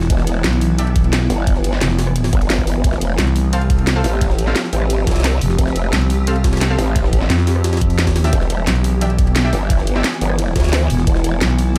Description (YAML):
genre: dark technical drum and bass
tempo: 175 BPM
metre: 4/4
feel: straight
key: E phrygian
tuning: A4 = 440 Hz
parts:
  - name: swarming drone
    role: sustained chords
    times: 0.0-11.8 s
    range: E3 to G4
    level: -26 LUFS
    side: equal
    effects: built-in reverb, ensemble chorus, sidechain pumping
  - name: growling FM bass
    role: bass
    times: 0.0-11.8 s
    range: E1 to F2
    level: -19 LUFS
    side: equal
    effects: none
  - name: jungle sampler-style drum kit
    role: drums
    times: 0.0-11.8 s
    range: hi-hat, ride cymbal, snare drum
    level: -32 LUFS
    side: equal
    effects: none
  - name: growl bass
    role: bass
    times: 0.1-11.4 s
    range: E1 to D2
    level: -21 LUFS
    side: equal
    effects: chorus, tube saturation
  - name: drum and bass drum kit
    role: drums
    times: 0.1-11.8 s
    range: hi-hat, rim click, snare drum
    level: -25 LUFS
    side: equal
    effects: none
  - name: electronic kick drum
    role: drums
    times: 0.1-11.1 s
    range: none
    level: -20 LUFS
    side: equal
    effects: none
  - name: orchestra-hit-like synth stab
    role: stabs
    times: 0.8-0.9, 3.5-11.8 s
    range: C4 to F5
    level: -29 LUFS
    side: equal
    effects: built-in reverb, tape echo
room: light reverb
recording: none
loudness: -16 LUFS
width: mono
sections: 0.0-11.8 A section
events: none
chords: 0.0 Em; 2.8 F; 8.3 Em7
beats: | 0.10 0.44 0.79 1.13 | 1.47 1.81 2.16 2.50 | 2.84 3.19 3.53 3.87 | 4.21 4.56 4.90 5.24 | 5.59 5.93 6.27 6.61 | 6.96 7.30 7.64 7.99 | 8.33 8.67 9.01 9.36 | 9.70 10.04 10.39 10.73 | 11.07 11.41 11.76